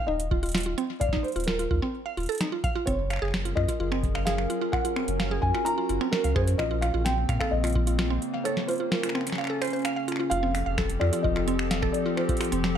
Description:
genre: IDM.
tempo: 129 BPM.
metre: 4/4.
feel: straight.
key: unclear.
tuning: A4 = 436 Hz.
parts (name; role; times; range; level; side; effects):
felt-muted upright piano; melody; 0.0-12.8 s; Bb4 to Bb5; -31 LUFS; equal; ping-pong delay.
mallet-like synth pluck; arpeggios; 0.0-12.8 s; C4 to F5; -31 LUFS; right 3 dB; chorus, tape echo.
warm sub bass; bass; 0.1-12.8 s; Eb1 to Bb2; -28 LUFS; equal; none.
booming analog drum machine; drums; 0.2-12.7 s; finger snaps, hi-hat, snare drum; -32 LUFS; equal; ping-pong delay.
electronic kick drum; drums; 0.3-7.8, 10.8-12.4 s; none; -30 LUFS; equal; none.
warbly tape-like pad; sustained chords; 3.4-12.8 s; Db3 to Bb4; -31 LUFS; left 1 dB; chorus, built-in reverb.
room: light reverb.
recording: none.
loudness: -24 LUFS.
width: side -9 dB against mid.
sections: 0.0-10.3 A section; 10.3-12.8 B section.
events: none.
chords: 0.0 Eb5; 2.9 Gbadd9; 6.6 Bbmadd9; 10.3 Fadd9.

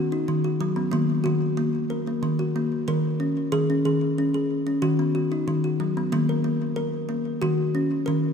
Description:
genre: world meditative, meditative tuned percussion.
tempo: 92 BPM.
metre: 4/4.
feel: straight.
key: Eb minor.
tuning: A4 = 441 Hz.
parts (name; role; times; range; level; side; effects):
kalimba; solo; 0.0-8.3 s; D#3 to Bb4; -22 LUFS; left 1 dB; ping-pong delay.
room: wet church reverb, RT60 2.8 s.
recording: none.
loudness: -22 LUFS.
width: side -6 dB against mid.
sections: 0.0-6.1 A section; 6.1-8.3 B section.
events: none.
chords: 0.0 B/D#; 0.9 Ebm; 2.2 Gb/Eb; 3.5 Db5/Eb; 4.8 B/D#; 6.1 Ebm.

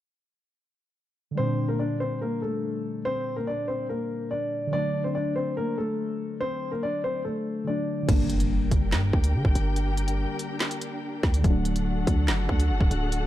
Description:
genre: hip hop, drill.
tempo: 143 BPM.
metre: 4/4.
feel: half-time.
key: G harmonic minor.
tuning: A4 = 439 Hz.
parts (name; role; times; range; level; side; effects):
muted felt-like synth keys; accompaniment; 1.3-13.3 s; Bb2 to D4; -31 LUFS; left 1 dB; chorus, phaser, low-pass filter.
dark concert grand piano; melody; 1.4-8.1 s; A3 to D5; -28 LUFS; left 1 dB; none.
muted studio string section; sustained chords; 8.1-13.3 s; D4 to G5; -33 LUFS; left 2 dB; none.
hard-hitting 808-style bass; bass; 8.1-13.3 s; D1 to D3; -25 LUFS; equal; none.
drill drum kit; drums; 8.1-13.2 s; crash cymbal, handclaps, hi-hat, kick drum, snare drum; -25 LUFS; equal; none.
impact; sound effects; 8.1-9.8 s; none; -33 LUFS; right 1 dB; none.
room: little or no reverb.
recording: dark, warm production.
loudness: -24 LUFS.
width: side -13 dB against mid.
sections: 1.4-8.1 A section; 8.1-13.3 B section.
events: impact 8.1-9.8; filter sweep on synth keys 8.1-13.3.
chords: 1.4 Gm; 4.7 D; 8.1 Gm; 11.4 D.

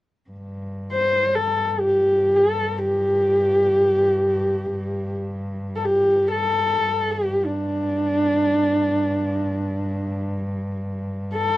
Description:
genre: mongolian traditional, Mongolian folk.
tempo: free time.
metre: none.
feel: none.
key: unclear.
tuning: A4 = 440 Hz.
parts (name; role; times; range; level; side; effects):
warm cello; drone; 0.3-11.6 s; G2; -28 LUFS; equal; none.
warm horsehead fiddle; melody; 0.9-11.6 s; D4 to C5; -19 LUFS; equal; none.
room: light reverb.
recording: worn, warbling old tape, cassette tape, warbly pitch drift, lossy compression artefacts.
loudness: -19 LUFS.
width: side -16 dB against mid.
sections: 0.3-11.6 A section.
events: none.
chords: none.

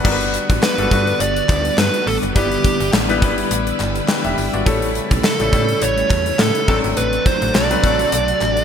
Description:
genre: 1980s-style pop.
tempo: 104 BPM.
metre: 4/4.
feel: swing 55% on 16ths.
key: G major.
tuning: A4 = 441 Hz.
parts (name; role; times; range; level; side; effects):
bright grand piano; accompaniment; 0.0-8.6 s; F#3 to G5; -22 LUFS; left 4 dB; none.
string machine, full ensemble; sustained chords; 0.0-8.6 s; C3 to B4; -24 LUFS; equal; ensemble chorus.
slap-like FM bass; bass; 0.0-8.6 s; E1 to A2; -23 LUFS; equal; none.
gated 80s drum kit; drums; 0.0-8.6 s; crash cymbal, hi-hat, kick drum, snare drum, tambourine; -19 LUFS; equal; gated reverb.
fuzz lead guitar; melody; 0.6-8.6 s; G4 to D5; -20 LUFS; right 3 dB; distortion, ping-pong delay.
group handclap; percussion; 0.6-8.6 s; none; -32 LUFS; left 3 dB; none.
analog synth brass; stabs; 7.5-8.1 s; D4 to A4; -27 LUFS; left 1 dB; chorus, ping-pong delay.
room: light reverb.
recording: bright 1980s-style digital production.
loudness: -15 LUFS.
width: side -8 dB against mid.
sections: 0.0-8.6 A section.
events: band accent 7.0-8.6.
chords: 0.0 Gmaj7; 2.4 Em7/G; 4.7 A7; 6.7 D7.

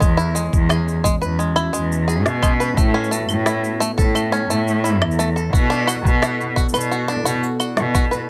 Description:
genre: folktronica.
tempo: 87 BPM.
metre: 4/4.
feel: straight.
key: unclear.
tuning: A4 = 440 Hz.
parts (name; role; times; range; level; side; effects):
warbly tape-like pad; sustained chords; 0.0-8.3 s; G#3 to D5; -32 LUFS; equal; chorus, built-in reverb.
bluegrass banjo; arpeggios; 0.0-8.3 s; G#3 to B4; -26 LUFS; equal; tape echo, plate reverb.
rich cello; bass; 0.0-8.2 s; E2 to B2; -22 LUFS; equal; tube saturation.
electronic kick drum; drums; 0.0-8.1 s; none; -20 LUFS; equal; small room ambience.
electronic shaker, snare drum and claves; drums; 0.0-8.3 s; none; -27 LUFS; equal; small room ambience.
room: light reverb.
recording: none.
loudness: -19 LUFS.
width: mono.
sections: 0.0-8.3 A section.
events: band accent 7.8-8.1.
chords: 0.0 E; 2.8 Aadd9; 5.5 Bm.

